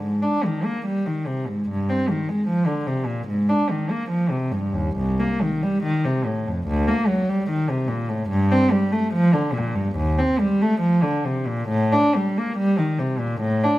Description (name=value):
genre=classical, baroque-style suite movement for unaccompanied cello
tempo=72 BPM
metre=4/4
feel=rubato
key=unclear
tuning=A4 = 440 Hz
part: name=warm cello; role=solo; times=0.0-13.8 s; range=C2 to D4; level=-19 LUFS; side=equal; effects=none
room=moderate recital hall reverb, RT60 1.4 s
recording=close, detailed microphones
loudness=-20 LUFS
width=side -16 dB against mid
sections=0.0-13.8 A section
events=none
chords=none